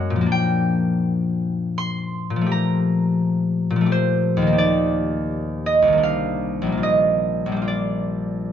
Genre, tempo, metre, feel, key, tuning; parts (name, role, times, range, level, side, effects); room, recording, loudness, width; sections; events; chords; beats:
classical, solo harp piece; 63-90 BPM; 3/4; rubato; Bb major; A4 = 440 Hz
concert harp; solo; 0.0-8.5 s; Bb1 to C6; -18 LUFS; left 1 dB
light reverb; nothing above 7.8 kHz; -18 LUFS; side -9 dB against mid
0.0-8.5 A section
0.3 Bb6; 2.5 Gm11/Bb; 4.6 Ebmaj7; 6.0 Cm11; 6.8 Bb6
| 0.30 0.99 1.76 | 2.49 3.20 3.90 | 4.58 5.29 6.02 | 6.82 7.67